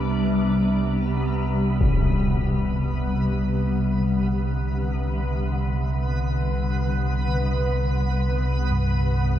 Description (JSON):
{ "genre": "dark ambient drone", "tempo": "free time", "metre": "none", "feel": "none", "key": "unclear", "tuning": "A4 = 440 Hz", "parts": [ { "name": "granular cloud pad", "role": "sustained chords", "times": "0.0-9.4 s", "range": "C3 to B3", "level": "-26 LUFS", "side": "left 1 dB", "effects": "built-in reverb" }, { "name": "deep rumbling drone", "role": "drone", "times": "0.0-9.4 s", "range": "C2 to C3", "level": "-23 LUFS", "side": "right 1 dB", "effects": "built-in reverb" }, { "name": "backwards swelling texture", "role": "texture", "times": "0.0-9.4 s", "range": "B3 to Eb5", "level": "-32 LUFS", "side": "equal", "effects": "built-in reverb, analog chorus" }, { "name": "impact", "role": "percussion", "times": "1.8-2.0 s", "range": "none", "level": "-25 LUFS", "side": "left 1 dB", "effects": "low-pass filter on sfx" }, { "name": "gamelan-type bossed gongs", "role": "arpeggios", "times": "8.7-9.4 s", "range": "G2", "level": "-27 LUFS", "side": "right 1 dB", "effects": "none" } ], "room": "wet lush hall reverb, RT60 2.8 s", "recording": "dreamy mix soaked in reverb", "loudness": "-21 LUFS", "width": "side -11 dB against mid", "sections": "0.0-9.4 A section", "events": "fade-out on ambient pad 0.0-9.4; fade-out on synth texture 0.0-9.4; filter sweep on synth drone 0.0-9.4", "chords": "0.0 Csus2" }